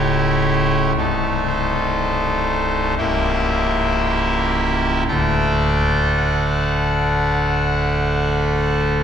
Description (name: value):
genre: classical, chorale-style piece for pipe organ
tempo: 55-61 BPM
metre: 4/4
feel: rubato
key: unclear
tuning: A4 = 436 Hz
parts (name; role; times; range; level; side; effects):
- pipe organ, trumpet; solo; 0.0-9.0 s; C1 to G5; -16 LUFS; equal; none
room: wet cathedral reverb, RT60 4.2 s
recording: recorded in a church or concert hall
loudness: -16 LUFS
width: side -8 dB against mid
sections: 0.0-9.0 A section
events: none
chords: 0.0 A7/C#; 1.0 Adim/C; 3.0 C#dim7; 5.1 D